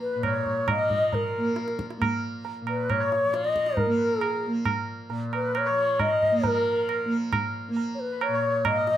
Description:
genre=indian classical, Hindustani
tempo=135 BPM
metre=3/4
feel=straight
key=Bb raga bhairavi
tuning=A4 = 438 Hz
part: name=bansuri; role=melody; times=0.0-9.0 s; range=Bb4 to Eb5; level=-25 LUFS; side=left 1 dB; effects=none
part: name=tanpura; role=drone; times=0.0-9.0 s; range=Bb2 to Bb3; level=-31 LUFS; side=right 1 dB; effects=none
part: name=melodica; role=second line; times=0.1-9.0 s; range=Bb4 to F5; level=-34 LUFS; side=left 1 dB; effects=none
part: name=tabla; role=percussion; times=0.2-9.0 s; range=none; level=-29 LUFS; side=right 3 dB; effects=none
room=wet studio reverb, RT60 0.6 s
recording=none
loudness=-23 LUFS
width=side -11 dB against mid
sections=0.0-6.4 A section; 6.4-9.0 B section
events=none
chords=none

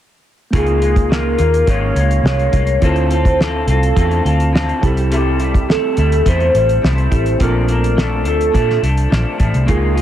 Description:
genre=indie pop, bedroom pop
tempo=105 BPM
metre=4/4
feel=straight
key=unclear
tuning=A4 = 439 Hz
part: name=electric guitar through a small old amp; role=accompaniment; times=0.5-10.0 s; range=Bb2 to A4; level=-21 LUFS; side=left 2 dB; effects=lush chorus, vibrato effect
part: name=tine electric piano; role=accompaniment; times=0.5-10.0 s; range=Bb3 to A4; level=-24 LUFS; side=right 2 dB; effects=overdrive, fast stereo tremolo
part: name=vintage muted picked electric bass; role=bass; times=0.5-10.0 s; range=Ab1 to Bb2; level=-16 LUFS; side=equal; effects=none
part: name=cloth-damped thuddy drum kit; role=drums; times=0.5-10.0 s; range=hi-hat, kick drum, snare drum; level=-18 LUFS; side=equal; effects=none
part: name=soft octave-layered synth lead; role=melody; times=0.6-10.0 s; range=G4 to Db5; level=-18 LUFS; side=equal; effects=phaser, wide subtle chorus, tape echo
room=light reverb, studio reverb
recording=heavily compressed radio sound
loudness=-12 LUFS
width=side -11 dB against mid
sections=0.5-10.0 A section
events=none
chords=0.5 Db6; 2.8 Dm7; 4.8 Am7; 7.4 Bbmaj7

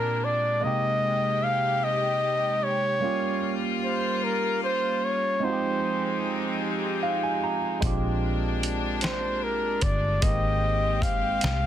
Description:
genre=slow six-eight R&B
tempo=50 BPM (dotted quarters)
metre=6/8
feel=straight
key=unclear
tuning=A4 = 439 Hz
part: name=warm flugelhorn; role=melody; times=0.0-11.7 s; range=Bb4 to F5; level=-26 LUFS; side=left 1 dB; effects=slapback echo
part: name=barky tine electric piano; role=accompaniment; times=0.0-11.7 s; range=Bb2 to Bb5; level=-30 LUFS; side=right 4 dB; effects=phaser
part: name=clear studio string section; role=sustained chords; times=0.0-11.7 s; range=C3 to G4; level=-32 LUFS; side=left 4 dB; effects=none
part: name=vintage muted fingered electric bass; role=bass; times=7.8-11.7 s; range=G1 to C2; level=-28 LUFS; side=equal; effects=none
part: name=dusty soul sampler-style drum kit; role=drums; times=7.8-11.6 s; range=hi-hat, kick drum, snare drum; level=-27 LUFS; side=equal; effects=none
room=light reverb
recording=dense, heavily limited modern master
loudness=-23 LUFS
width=side -10 dB against mid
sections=0.0-11.7 A section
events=tine electric piano fill 6.6-7.8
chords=0.0 Bb13; 0.6 Abmaj7; 3.0 Gm7b5; 5.4 Fm9; 7.8 Bb13; 10.2 Abmaj7

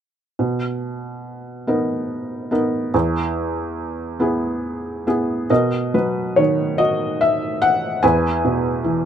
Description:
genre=classical, lyrical solo piano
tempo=48 BPM (dotted quarters)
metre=6/8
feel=rubato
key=B major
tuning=A4 = 440 Hz
part: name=felt-muted upright piano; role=solo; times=0.4-9.1 s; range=E2 to G#5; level=-18 LUFS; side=equal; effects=none
room=moderate small room reverb, RT60 0.6 s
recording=none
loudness=-18 LUFS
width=side -9 dB against mid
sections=0.4-5.5 A section; 5.5-9.1 B section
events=none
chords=0.4 Bmaj7; 2.9 E; 5.5 Bmaj7; 8.0 E

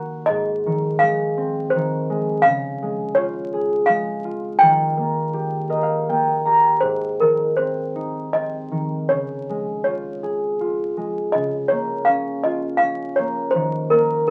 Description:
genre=children's music, lullaby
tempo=81 BPM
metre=3/4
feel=rubato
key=Ab major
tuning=A4 = 441 Hz
part: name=toy piano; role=melody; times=0.0-14.3 s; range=Bb4 to G5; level=-22 LUFS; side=equal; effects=none
part: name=concert harp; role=accompaniment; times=0.0-14.3 s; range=Ab2 to Bb5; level=-24 LUFS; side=equal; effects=none
room=moderate studio reverb, RT60 0.6 s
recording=very old 78 rpm record, vinyl crackle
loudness=-21 LUFS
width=mono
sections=0.0-6.8 A section; 6.8-14.3 B section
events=harp fill 5.3-6.8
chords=0.3 Ab; 2.5 Db; 4.6 Eb; 6.8 Ab; 9.1 Db; 11.3 Bbm/Db; 13.5 Eb5

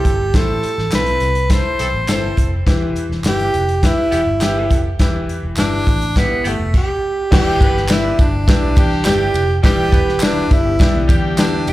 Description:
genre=uptempo 1960s-style soul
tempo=103 BPM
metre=4/4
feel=straight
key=unclear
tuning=A4 = 441 Hz
part: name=breathy tenor saxophone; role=melody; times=0.0-11.7 s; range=A3 to C5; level=-19 LUFS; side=right 1 dB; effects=slapback echo, tape echo
part: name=warm horn section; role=second line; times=0.0-11.6 s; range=E3 to B4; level=-26 LUFS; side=right 1 dB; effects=slapback echo, tape echo
part: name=bright concert grand piano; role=accompaniment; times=0.0-11.7 s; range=A2 to C5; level=-25 LUFS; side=left 3 dB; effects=slapback echo
part: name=tambourine and handclaps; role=percussion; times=0.0-11.7 s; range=none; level=-30 LUFS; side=equal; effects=none
part: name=vintage muted fingered electric bass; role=bass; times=0.1-11.7 s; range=E1 to E2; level=-20 LUFS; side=equal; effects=none
part: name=natural country drum kit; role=drums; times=0.1-11.7 s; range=crash cymbal, hi-hat, kick drum, ride cymbal, snare drum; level=-16 LUFS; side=equal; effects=none
part: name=vibraphone with medium mallets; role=second line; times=6.8-11.7 s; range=D5 to G5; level=-33 LUFS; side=right 3 dB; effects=none
part: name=mellow electric guitar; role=riff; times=10.7-11.7 s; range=D3 to G4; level=-24 LUFS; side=left 7 dB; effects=phaser, slapback echo
room=light reverb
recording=live gig heard through the venue's PA, club reverb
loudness=-13 LUFS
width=side -16 dB against mid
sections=0.0-7.3 A section; 7.3-11.7 B section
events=none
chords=0.0 Am; 2.7 Em; 7.3 Em7

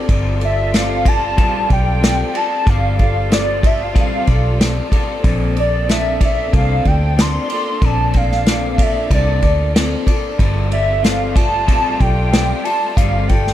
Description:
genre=indie pop, bedroom pop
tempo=93 BPM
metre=4/4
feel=straight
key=unclear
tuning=A4 = 439 Hz
part: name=electric guitar through a small old amp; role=accompaniment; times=0.0-13.5 s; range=G3 to D5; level=-23 LUFS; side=left 4 dB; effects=wide subtle chorus, warbly pitch drift
part: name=warm symphonic string section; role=sustained chords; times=0.0-13.5 s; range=G3 to A4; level=-28 LUFS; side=right 1 dB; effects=none
part: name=vintage muted picked electric bass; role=bass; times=0.1-13.5 s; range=G1 to D2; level=-19 LUFS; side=equal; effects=none
part: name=unplugged drum kit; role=drums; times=0.1-13.5 s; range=hi-hat, kick drum, ride cymbal, snare drum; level=-17 LUFS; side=equal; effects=none
part: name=hollow clarinet-like synth lead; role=melody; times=0.4-13.5 s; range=D5 to C6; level=-20 LUFS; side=equal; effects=analog chorus
room=small room ambience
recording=dark, warm production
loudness=-13 LUFS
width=side -12 dB against mid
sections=0.0-13.5 A section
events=none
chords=0.1 G9sus4; 5.2 Bbmaj9; 10.4 G9sus4

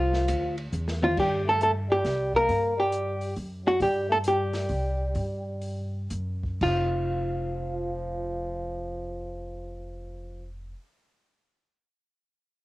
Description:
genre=jazz, small-group swing and bop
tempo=116-136 BPM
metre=3/4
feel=swing 66% on 8ths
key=unclear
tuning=A4 = 440 Hz
part: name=hollow-body jazz guitar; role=melody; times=0.0-10.7 s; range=F4 to Bb4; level=-25 LUFS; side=equal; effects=cassette tape
part: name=growling trombone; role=second line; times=0.0-10.5 s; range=F3 to Bb3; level=-34 LUFS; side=right 1 dB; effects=none
part: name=upright bass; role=bass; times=0.0-10.7 s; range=F1 to G2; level=-31 LUFS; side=equal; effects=none
part: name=open jazz drum kit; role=drums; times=0.1-6.8 s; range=crash cymbal, hi-hat, kick drum, ride cymbal, snare drum, toms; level=-37 LUFS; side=equal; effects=cassette tape
room=light reverb, small room ambience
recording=home recording on cassette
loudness=-25 LUFS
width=side -18 dB against mid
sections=0.0-1.2 A section; 1.2-6.6 B section; 6.6-9.7 C section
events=drum fill 0.7-1.2; slowing down 3.8-6.6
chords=0.0 Fmaj7(no3); 1.2 Gsus2; 2.0 C5; 2.5 Gm; 3.4 N.C.; 4.7 C5; 5.2 N.C.

